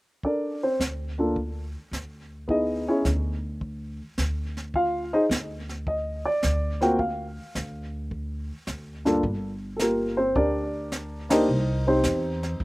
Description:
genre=jazz piano trio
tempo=107 BPM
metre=4/4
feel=swing 69% on 8ths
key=G minor from 9.2 s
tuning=A4 = 441 Hz
part: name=dark baby grand piano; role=melody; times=0.2-12.6 s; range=G2 to G5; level=-24 LUFS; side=equal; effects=none
part: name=jazz brush drum kit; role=drums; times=0.2-12.6 s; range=brushed snare drum, hi-hat, kick drum, ride cymbal, snare drum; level=-31 LUFS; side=equal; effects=none
part: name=upright bass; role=bass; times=0.8-12.6 s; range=G1 to F2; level=-30 LUFS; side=equal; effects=none
room=little or no reverb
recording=recorded outdoors, with no room sound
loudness=-24 LUFS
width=side -21 dB against mid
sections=0.2-9.2 A section; 9.2-12.6 B section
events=band accent 11.2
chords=0.2 D5; 3.6 N.C.; 9.2 Gm; 11.5 Cm7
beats=| 0.23 0.79 1.36 1.92 | 2.48 3.05 3.61 4.17 | 4.74 5.30 5.86 6.42 | 6.98 7.55 8.11 8.67 | 9.23 9.79 10.35 10.91 | 11.47 12.03 12.59

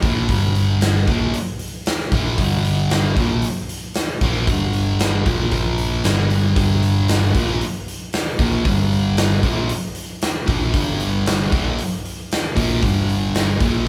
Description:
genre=blues rock power trio and southern rock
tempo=115 BPM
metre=4/4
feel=straight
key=G minor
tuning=A4 = 440 Hz
part: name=thick fuzz guitar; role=riff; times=0.0-13.9 s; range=G2 to Bb3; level=-23 LUFS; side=equal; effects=distortion
part: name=overdriven picked electric bass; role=bass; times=0.0-13.8 s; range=G1 to Bb1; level=-25 LUFS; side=equal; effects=none
part: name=big rock drum kit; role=drums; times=0.0-13.7 s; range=hi-hat, kick drum, snare drum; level=-24 LUFS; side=equal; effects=none
room=moderate large studio reverb, RT60 1.4 s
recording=band playing live in one room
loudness=-19 LUFS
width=mono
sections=0.0-13.9 A section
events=none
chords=0.0 Gm; 5.5 Bb5; 6.0 Gm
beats=| 0.29 0.82 1.34 1.86 | 2.38 2.91 3.43 3.95 | 4.48 5.00 5.52 6.04 | 6.57 7.09 7.61 8.13 | 8.65 9.18 9.70 10.22 | 10.74 11.26 11.78 12.30 | 12.82 13.34 13.86

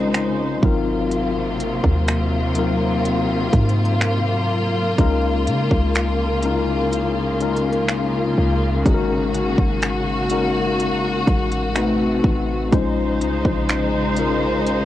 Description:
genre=contemporary R&B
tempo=62 BPM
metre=4/4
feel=straight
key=unclear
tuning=A4 = 436 Hz
part: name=mellow tine electric piano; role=accompaniment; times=0.0-14.8 s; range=Gb3 to C5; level=-22 LUFS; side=left 4 dB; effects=medium stereo tremolo, cassette tape
part: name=clear studio string section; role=sustained chords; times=0.0-14.8 s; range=C3 to C5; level=-22 LUFS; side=equal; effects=cassette tape
part: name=warm 808-style bass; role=bass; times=0.0-14.8 s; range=Ab1 to Db3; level=-24 LUFS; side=equal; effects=none
part: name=trap drum kit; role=drums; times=0.1-14.8 s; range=finger snaps, hi-hat, kick drum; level=-19 LUFS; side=equal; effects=none
room=moderate booth ambience, RT60 0.2 s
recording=home recording on cassette, lossy compression artefacts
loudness=-17 LUFS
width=side -13 dB against mid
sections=0.0-14.8 A section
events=none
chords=0.0 Bbm11; 0.6 Ab13; 5.0 Db6; 8.9 Ab9sus4; 11.8 Adim7; 12.7 Bbm11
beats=0.14 | 1.11 2.08 3.05 4.01 | 4.98 5.95 6.92 7.89 | 8.85 9.82 10.79 11.76 | 12.72 13.69 14.66

